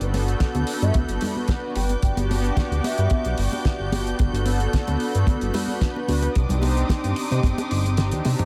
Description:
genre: nu-disco, nu disco.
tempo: 111 BPM.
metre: 4/4.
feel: straight.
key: G major.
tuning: A4 = 436 Hz.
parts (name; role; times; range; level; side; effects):
breathy mellow concert flute; melody; 0.0-3.4 s; B4 to G5; -36 LUFS; equal; delay.
warm analog pad; accompaniment; 0.0-8.4 s; B3 to B4; -30 LUFS; equal; analog chorus, cassette tape, sidechain pumping, analog delay.
warm studio string section; sustained chords; 0.0-8.4 s; D5 to G6; -36 LUFS; equal; sidechain pumping.
chorused synth bass; bass; 0.0-8.4 s; G1 to C3; -25 LUFS; equal; sidechain pumping.
damped 70s drum kit; drums; 0.0-8.4 s; hi-hat, snare drum, toms; -33 LUFS; equal; none.
congas; percussion; 0.1-8.4 s; none; -32 LUFS; equal; none.
kick drum; drums; 0.4-7.5 s; none; -23 LUFS; equal; none.
room: light reverb, small room ambience.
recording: faint mains hum.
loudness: -23 LUFS.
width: mono.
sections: 0.0-8.4 A section.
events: kick drops out 8.0-8.4; drum fill 8.0-8.4.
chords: 0.0 Gmaj7; 1.8 Em9/G; 4.2 Gmaj7; 6.4 Cmadd9.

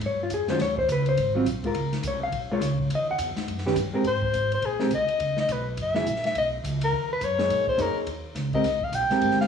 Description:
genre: jazz, small-group swing and bop.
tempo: 209 BPM.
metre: 4/4.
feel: swing 61% on 8ths.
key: Ab major.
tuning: A4 = 441 Hz.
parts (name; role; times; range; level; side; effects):
upright bass; bass; 0.0-9.5 s; Gb1 to Bb2; -30 LUFS; right 1 dB; none.
open jazz drum kit; drums; 0.0-9.5 s; hi-hat, kick drum, ride cymbal, snare drum; -34 LUFS; left 2 dB; cassette tape.
hollow-body jazz guitar; accompaniment; 0.1-9.5 s; Eb3 to F#5; -26 LUFS; equal; cassette tape.
mellow soprano saxophone; melody; 4.1-9.5 s; Ab4 to G5; -25 LUFS; left 2 dB; cassette tape.
room: moderate spring reverb, RT60 1.9 s, studio ambience.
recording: home recording on cassette, small room reverb.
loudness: -23 LUFS.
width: side -7 dB against mid.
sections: 0.0-4.0 A section; 4.0-9.5 A section.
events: soprano saxophone solo 4.0-9.5.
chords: 0.0 Bbm7 (rootless); 0.6 Badd9; 1.2 Ab13; 1.8 Db6; 2.9 Eb(#9); 4.0 Abadd9; 5.2 Badd9; 5.8 Gb9; 6.3 Bmaj9; 7.5 Bbm7; 8.1 Eb6; 8.6 Abmaj9.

